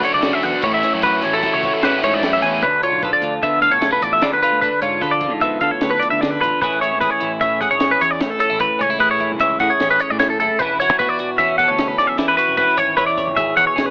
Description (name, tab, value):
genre	math rock and midwest emo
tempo	151 BPM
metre	5/4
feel	straight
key	A major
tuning	A4 = 440 Hz
part	twelve-string electric guitar	accompaniment	0.0-13.9 s	A2 to C#5	-23 LUFS	equal	cassette tape
part	twelve-string electric guitar	arpeggios	0.0-13.9 s	A4 to G#5	-16 LUFS	equal	cassette tape
part	biting overdriven guitar	riff	0.0-2.6 s	A2 to F#4	-20 LUFS	equal	cassette tape
part	compact cocktail drum kit	drums	0.0-13.9 s	hi-hat, kick drum, snare drum	-25 LUFS	equal	cassette tape
part	growling picked electric bass	bass	0.1-13.9 s	E1 to D3	-28 LUFS	equal	overdrive
room	moderate spring reverb, RT60 1.3 s, studio reverb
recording	home recording on cassette, AM radio sound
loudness	-14 LUFS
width	side -37 dB against mid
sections	0.0-2.6 A section; 2.6-13.9 B section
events	none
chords	0.0 Dmaj7; 0.6 A6; 2.6 Dm6; 6.6 Amaj7; 10.6 E13